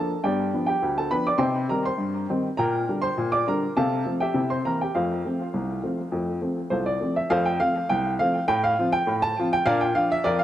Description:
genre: ragtime piano.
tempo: 102 BPM.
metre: 2/4.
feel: straight.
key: F major.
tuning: A4 = 439 Hz.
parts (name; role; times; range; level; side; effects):
warm upright piano; solo; 0.0-10.4 s; C2 to D6; -22 LUFS; equal; analog delay.
room: moderate spring reverb, RT60 1.8 s, small room reverb.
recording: none.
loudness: -22 LUFS.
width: side -12 dB against mid.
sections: 0.0-7.3 A section; 7.3-10.4 B section.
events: none.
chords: 0.2 G7; 1.4 Cm; 2.6 Gm/Bb; 3.8 F/C; 4.3 C7; 4.9 F; 8.5 F/A; 9.7 Bb.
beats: | 0.25 0.83 | 1.42 2.00 | 2.59 3.17 | 3.76 4.35 | 4.94 5.54 | 6.13 6.72 | 7.31 7.90 | 8.49 9.08 | 9.67 10.26.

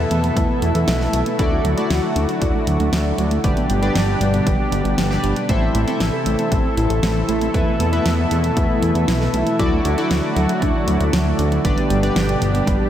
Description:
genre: synthwave.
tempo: 117 BPM.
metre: 4/4.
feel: straight.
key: unclear.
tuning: A4 = 440 Hz.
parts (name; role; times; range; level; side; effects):
lush unison pad; sustained chords; 0.0-12.9 s; B2 to A4; -22 LUFS; equal; chorus, sidechain pumping.
soft round pluck; arpeggios; 0.0-12.9 s; F#3 to A4; -25 LUFS; right 1 dB; analog chorus, tape echo.
chorused polysynth; stabs; 0.0-12.9 s; D4 to E5; -24 LUFS; left 1 dB; tape echo.
fat analog bass; bass; 0.0-12.8 s; G1 to E2; -20 LUFS; equal; sidechain pumping.
pop drum kit; drums; 0.1-12.8 s; hi-hat, snare drum; -27 LUFS; equal; small room ambience.
electronic kick drum; drums; 0.4-12.8 s; none; -21 LUFS; equal; small room ambience.
room: wet cathedral reverb, RT60 5.6 s.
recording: dreamy mix soaked in reverb.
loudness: -16 LUFS.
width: side -10 dB against mid.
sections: 0.0-12.9 A section.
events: filter sweep on synth arpeggio sound 0.0-12.9.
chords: 0.0 Esus4; 1.4 Dadd9; 3.4 G; 5.5 Am; 7.5 Esus4; 9.6 Dadd9; 11.6 G.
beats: 0.36 0.88 | 1.39 1.90 2.42 2.93 | 3.44 3.95 4.47 4.98 | 5.49 6.00 6.52 7.03 | 7.54 8.06 8.57 9.08 | 9.60 10.11 10.62 11.13 | 11.65 12.16 12.67.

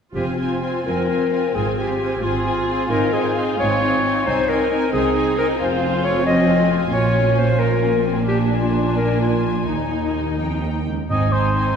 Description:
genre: classical, dramatic, fast romantic movement for symphony orchestra.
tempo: 83-91 BPM (dotted quarters).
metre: 6/8.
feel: rubato.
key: F minor.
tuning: A4 = 440 Hz.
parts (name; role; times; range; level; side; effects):
clear clarinet; second line; 0.1-10.4 s; Eb4 to Eb5; -21 LUFS; left 2 dB; none.
rich symphonic violin section; second line; 0.1-11.8 s; C4 to Ab4; -28 LUFS; left 2 dB; none.
warm symphonic viola section; accompaniment; 0.1-11.8 s; Bb3 to F4; -24 LUFS; right 1 dB; none.
rich symphonic violin section; melody; 0.2-11.8 s; G5 to Ab5; -30 LUFS; left 4 dB; none.
rich symphonic cello section; bass; 0.2-11.7 s; Db2 to C3; -26 LUFS; right 2 dB; none.
rich symphonic double bass section; bass; 0.2-11.7 s; F1 to Eb2; -25 LUFS; right 2 dB; none.
warm oboe; second line; 11.1-11.8 s; C5 to Eb5; -20 LUFS; right 1 dB; none.
timpani; percussion; 11.1-11.7 s; Ab2; -25 LUFS; equal; none.
room: wet concert hall reverb, RT60 1.9 s.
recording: heard from further back in the room.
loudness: -17 LUFS.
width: side -7 dB against mid.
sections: 0.2-11.1 A section.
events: none.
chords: 0.2 Fm; 1.5 Fm/Ab; 2.9 Ab; 4.3 Ab/C; 5.6 Fm; 6.9 Bbm7; 8.3 Bb7; 9.7 Ebsus4; 10.4 Eb; 11.1 Ab.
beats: | 0.16 0.86 | 1.55 2.23 | 2.90 3.60 | 4.27 4.94 | 5.61 6.27 | 6.94 7.60 | 8.28 8.98 | 9.69 10.40 | 11.11.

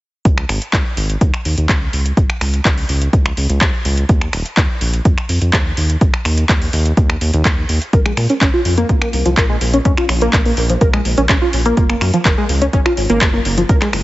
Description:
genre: progressive house.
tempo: 125 BPM.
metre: 4/4.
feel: straight.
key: unclear.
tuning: A4 = 441 Hz.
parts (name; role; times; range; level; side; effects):
round analog bass; bass; 0.3-14.0 s; Eb1 to Bb2; -18 LUFS; equal; sidechain pumping.
deep house drum kit; drums; 0.3-14.0 s; finger snaps, handclaps, hi-hat; -20 LUFS; equal; overdrive.
electronic kick drum; drums; 0.3-13.8 s; none; -15 LUFS; equal; overdrive.
tight sequenced synth; arpeggios; 7.9-13.9 s; F3 to Bb4; -17 LUFS; equal; chorus, phaser, vintage 12-bit sampler grit, sidechain pumping, digital delay.
room: light reverb.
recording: heavily compressed radio sound, multiband compression, nothing above 7.8 kHz.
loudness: -13 LUFS.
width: side -17 dB against mid.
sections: 0.3-14.0 A section.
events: none.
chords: 0.3 Db5; 4.1 Ebsus2; 7.9 Bb5; 11.8 Gbsus2.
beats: | 0.25 0.73 1.21 1.69 | 2.17 2.65 3.13 3.61 | 4.09 4.57 5.05 5.53 | 6.01 6.49 6.97 7.45 | 7.93 8.41 8.89 9.37 | 9.85 10.33 10.81 11.29 | 11.77 12.25 12.73 13.21 | 13.69.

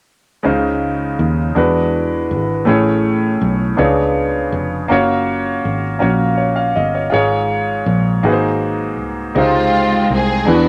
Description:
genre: slow gospel.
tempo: 54 BPM (dotted quarters).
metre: 6/8.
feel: straight.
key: Db major.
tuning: A4 = 444 Hz.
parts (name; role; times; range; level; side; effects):
clear baby grand piano; accompaniment; 0.4-10.7 s; Ab2 to F5; -18 LUFS; equal; none.
fingered electric bass; bass; 0.5-10.7 s; F1 to E2; -22 LUFS; equal; none.
rich studio string section; melody; 9.4-10.7 s; Ab3 to Ab4; -17 LUFS; equal; none.
room: wet studio reverb, RT60 0.5 s.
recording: none.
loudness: -16 LUFS.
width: mono.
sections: 0.4-9.4 A section; 9.4-10.7 B section.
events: none.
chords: 0.4 Dbmaj9; 1.6 E9; 2.7 Amaj7; 3.8 Db7b9; 4.9 Gbmaj7; 7.1 Db/Ab; 8.2 Ab9; 9.4 Dbmaj9.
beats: | 0.44 1.56 | 2.68 3.79 | 4.91 6.02 | 7.13 8.25 | 9.36 10.47.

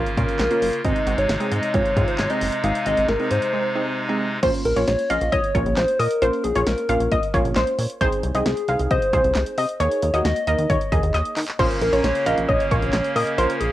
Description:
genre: synth-pop.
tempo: 134 BPM.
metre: 4/4.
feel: straight.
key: Bb minor.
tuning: A4 = 440 Hz.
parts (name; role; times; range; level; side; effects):
soft struck synth lead; melody; 0.0-13.7 s; Ab4 to F5; -23 LUFS; left 1 dB; chorus, cassette tape, plate reverb.
analog pluck; accompaniment; 0.0-13.6 s; Ab3 to Bb4; -28 LUFS; right 2 dB; chorus, cassette tape, plate reverb.
pipe organ, clarinet reed; sustained chords; 0.0-4.4, 11.6-13.7 s; C3 to F4; -26 LUFS; equal; cassette tape.
chorused synth bass; bass; 0.0-13.7 s; Gb1 to Eb3; -24 LUFS; equal; none.
punchy analog drum machine; drums; 0.1-13.7 s; crash cymbal, handclaps, hi-hat, kick drum, snare drum; -26 LUFS; equal; none.
warbly dusty pluck; second line; 4.4-13.5 s; C5 to F5; -24 LUFS; equal; chorus, cassette tape, analog delay, plate reverb.
room: moderate studio reverb, RT60 0.6 s.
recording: home recording on cassette.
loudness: -18 LUFS.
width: side -14 dB against mid.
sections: 0.0-4.4 A section; 4.4-13.7 B section.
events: break 3.5-4.4; drum fill 11.1-11.6.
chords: 0.0 Bbm; 0.8 Ab; 4.4 Bbm; 8.0 Ab/C; 9.8 Ebsus4; 11.6 Bbm.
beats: 0.40 | 0.85 1.29 1.74 2.19 | 2.64 3.08 3.53 3.98 | 4.43 4.88 5.32 5.77 | 6.22 6.67 7.12 7.56 | 8.01 8.46 8.91 9.35 | 9.80 10.25 10.70 11.14 | 11.59 12.04 12.49 12.94 | 13.38.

